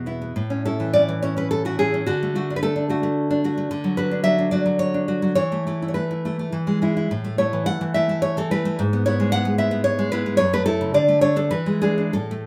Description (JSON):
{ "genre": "romantic piece for solo classical guitar", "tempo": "92-114 BPM", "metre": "3/4", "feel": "rubato", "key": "A major", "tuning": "A4 = 440 Hz", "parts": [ { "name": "nylon-string guitar", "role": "solo", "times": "0.0-12.5 s", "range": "E2 to F#5", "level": "-22 LUFS", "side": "equal", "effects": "none" } ], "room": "wet studio reverb, RT60 0.5 s", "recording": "rough home demo mix", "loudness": "-22 LUFS", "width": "mono", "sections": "0.4-12.5 A section", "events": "none", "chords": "0.4 A; 2.1 D; 3.7 Dmaj13; 5.4 Esus4; 6.5 E; 7.1 A5; 8.8 E/G#; 10.4 F#m7; 10.9 D5; 11.5 E7", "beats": "| 0.37 0.95 1.52 | 2.08 2.64 3.18 | 3.72 4.26 4.81 | 5.38 5.96 6.54 | 7.12 7.68 8.23 | 8.79 9.32 9.85 | 10.39 10.94 11.52 | 12.15" }